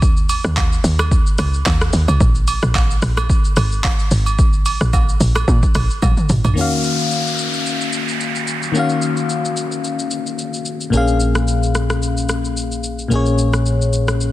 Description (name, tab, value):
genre	amapiano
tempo	110 BPM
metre	4/4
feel	swing 55% on 16ths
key	Eb minor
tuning	A4 = 438 Hz
part	woody log drum bass	bass	0.0-6.6 s	Ab1 to Bb2	-17 LUFS	equal	none
part	deep house drum kit	drums	0.0-14.3 s	handclaps, hi-hat, kick drum, rim click, shaker, toms	-18 LUFS	equal	vintage 12-bit sampler grit
part	agogo bells and woodblock	percussion	0.3-6.6 s	none	-26 LUFS	right 6 dB	none
part	FM electric piano	accompaniment	6.5-14.3 s	Bb2 to F5	-19 LUFS	left 4 dB	chorus
part	downlifter	sound effects	6.6-10.9 s	none	-24 LUFS	equal	none
part	hollow-body short-scale picked electric bass	bass	10.9-14.3 s	Bb1	-18 LUFS	equal	none
room	digital ambience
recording	dense, heavily limited modern master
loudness	-15 LUFS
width	side -15 dB against mid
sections	0.0-6.6 A section; 6.6-14.3 B section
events	drop 0.0-6.6; drum fill 6.0-6.6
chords	0.0 Dbsus2; 2.2 Absus2; 6.6 Ebm9; 10.9 Bbm7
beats	| 0.02 0.57 1.11 1.66 | 2.21 2.75 3.30 3.84 | 4.39 4.93 5.48 6.02 | 6.57 7.11 7.66 8.21 | 8.75 9.30 9.84 10.39 | 10.93 11.48 12.02 12.57 | 13.11 13.66 14.21